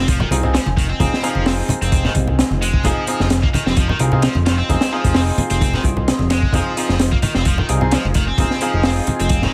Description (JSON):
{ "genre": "breakbeat, breaks", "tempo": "130 BPM", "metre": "4/4", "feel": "swing 54% on 16ths", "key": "F minor", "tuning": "A4 = 440 Hz", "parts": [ { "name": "deep dark ambient pad", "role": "sustained chords", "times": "0.2-9.5 s", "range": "F4 to C6", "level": "-33 LUFS", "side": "equal", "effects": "chorus, built-in reverb, sidechain pumping" }, { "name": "tight distorted guitar", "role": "riff", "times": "0.0-9.5 s", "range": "Eb3 to C4", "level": "-27 LUFS", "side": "equal", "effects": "distortion, delay" }, { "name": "fat analog bass", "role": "bass", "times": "0.0-9.5 s", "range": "F1 to C2", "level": "-22 LUFS", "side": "equal", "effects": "tube saturation" }, { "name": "impact", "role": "sound effects", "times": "0.0-1.0 s", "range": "none", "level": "barely audible", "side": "none", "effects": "none" }, { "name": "crunchy breakbeat drum kit", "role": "drums", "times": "0.1-9.5 s", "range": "hi-hat, kick drum, snare drum", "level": "-21 LUFS", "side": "equal", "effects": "none" }, { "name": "congas", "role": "percussion", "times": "0.2-9.5 s", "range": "none", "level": "-26 LUFS", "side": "equal", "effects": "none" }, { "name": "bright concert grand piano", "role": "stabs", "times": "0.3-9.5 s", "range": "C4 to Ab4", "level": "-26 LUFS", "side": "equal", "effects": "delay" } ], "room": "small room reverb", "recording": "vinyl crackle", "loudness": "-17 LUFS", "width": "mono", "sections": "0.0-9.5 A section", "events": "impact 0.0-1.0", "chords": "0.0 Fm7" }